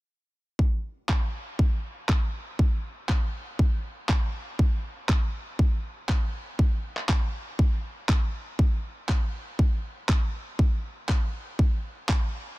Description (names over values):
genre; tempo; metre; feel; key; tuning
house; 120 BPM; 4/4; straight; none; none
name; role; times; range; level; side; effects
electronic kick drum; drums; 0.6-12.2 s; none; -23 LUFS; equal; none
electronic handclaps; drums; 1.1-12.2 s; none; -35 LUFS; equal; low-pass filter on snare, low-pass filter on room
room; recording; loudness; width
little or no reverb; dense, heavily limited modern master; -24 LUFS; side -20 dB against mid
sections
0.6-12.6 A section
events
none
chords
none